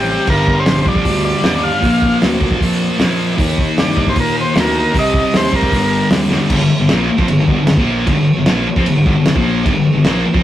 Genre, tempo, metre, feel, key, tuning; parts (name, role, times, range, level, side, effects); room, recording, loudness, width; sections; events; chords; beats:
garage rock duo or trio; 154 BPM; 4/4; straight; G minor; A4 = 444 Hz
overdriven combo organ; melody; 0.0-6.1 s; G4 to F5; -18 LUFS; equal
thick fuzz guitar; riff; 0.0-10.4 s; G2 to Eb4; -15 LUFS; left 1 dB; distortion
fuzz fingered electric bass; bass; 0.0-10.4 s; F1 to Bb2; -21 LUFS; right 1 dB; overdrive
cloth-damped thuddy drum kit; drums; 0.3-10.4 s; crash cymbal, hi-hat, kick drum, snare drum; -17 LUFS; equal
wet small room reverb, RT60 0.5 s; rough rehearsal-room recording, warm saturation; -12 LUFS; side -12 dB against mid
0.0-6.5 A section; 6.5-10.4 B section
drum fill 6.3
0.3 Gm; 1.8 Bb; 3.4 Eb; 4.9 Cm; 5.7 Gm
| 0.28 0.67 1.05 1.44 | 1.83 2.22 2.60 2.99 | 3.38 3.77 4.16 4.55 | 4.94 5.33 5.72 6.11 | 6.51 6.90 7.29 7.68 | 8.08 8.47 8.86 9.26 | 9.65 10.05